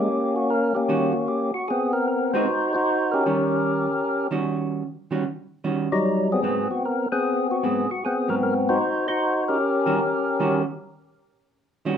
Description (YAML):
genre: jazz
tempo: 152 BPM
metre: 4/4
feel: swing 65% on 8ths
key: Eb mixolydian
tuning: A4 = 440 Hz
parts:
  - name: percussive tonewheel organ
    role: melody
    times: 0.0-10.6 s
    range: F#3 to C5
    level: -21 LUFS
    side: left 1 dB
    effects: overdrive, slow rotary speaker, plate reverb
  - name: vintage hollow-body jazz guitar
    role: accompaniment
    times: 0.9-12.0 s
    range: Ab2 to B4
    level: -26 LUFS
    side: right 4 dB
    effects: none
room: wet club reverb, RT60 0.6 s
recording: none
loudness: -21 LUFS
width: side -8 dB against mid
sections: 0.1-12.0 A section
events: none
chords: 0.1 Eb7#9; 1.7 Ab7#9; 3.3 Eb7#9; 6.4 Ab7#9; 9.6 Eb7#9